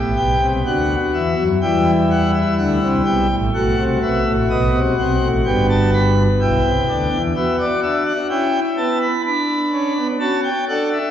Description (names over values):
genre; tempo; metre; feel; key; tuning
classical, baroque-style 4-part fugue for pipe organ; 63 BPM; 4/4; straight; E minor; A4 = 444 Hz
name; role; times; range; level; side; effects
pipe organ, principal chorus; solo; 0.0-11.1 s; G1 to B5; -15 LUFS; equal; none
room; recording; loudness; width
wet concert hall reverb, RT60 1.8 s; heard from further back in the room, nothing above 7.9 kHz; -15 LUFS; side -10 dB against mid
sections
0.0-11.1 A section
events
none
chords
0.0 Em; 3.5 B7; 5.5 Em/G; 7.4 Bm